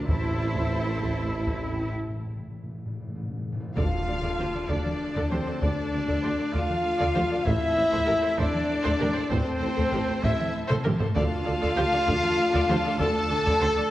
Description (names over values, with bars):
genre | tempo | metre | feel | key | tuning
cinematic, epic orchestral film score | 65 BPM (dotted quarters) | 6/8 | straight | D minor | A4 = 440 Hz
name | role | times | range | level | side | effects
rich symphonic violin section | melody | 0.0-13.9 s | C5 to A5 | -35 LUFS | left 2 dB | none
warm symphonic violin section | second line | 0.0-13.9 s | G4 to A5 | -38 LUFS | left 1 dB | none
rich symphonic viola section | accompaniment | 0.0-13.8 s | G4 to D5 | -34 LUFS | right 1 dB | none
dark French horn section | sustained chords | 0.0-13.9 s | C4 to A4 | -30 LUFS | left 2 dB | none
rich symphonic string section | sustained chords | 0.0-13.9 s | A3 to A5 | -35 LUFS | equal | none
dark symphonic cello section | bass | 0.0-13.8 s | A2 to E4 | -35 LUFS | right 1 dB | none
mellow tuba | bass | 0.0-13.7 s | A1 to D2 | -35 LUFS | right 2 dB | none
warm symphonic double bass section | bass | 0.0-13.7 s | A1 to D2 | -34 LUFS | right 2 dB | none
taiko ensemble | drums | 0.1-13.9 s | none | -30 LUFS | equal | none
timpani | percussion | 0.1-4.7 s | A2 to D3 | -36 LUFS | left 1 dB | none
mellow small flute group | second line | 3.8-13.9 s | C5 to A5 | -32 LUFS | equal | none
bright trumpet | stabs | 3.8-13.9 s | C4 to A4 | -32 LUFS | equal | none
impact | sound effects | 3.8-5.6 s | none | -38 LUFS | equal | none
room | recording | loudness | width
wet concert hall reverb, RT60 2.3 s | worn, warbling old tape, cassette tape, warbly pitch drift | -23 LUFS | side -14 dB against mid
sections
0.0-3.8 A section; 3.8-13.9 A section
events
timpani fill 0.1-3.8; break 1.9-3.8; drum fill 3.3-3.8, 10.7-11.2; impact 3.8-5.6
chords
0.1 Am; 3.8 Dm; 7.5 Am; 11.2 Dm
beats
| 0.08 1.00 | 1.93 2.85 | 3.77 4.70 | 5.62 6.54 | 7.47 8.39 | 9.31 10.24 | 11.16 12.08 | 13.01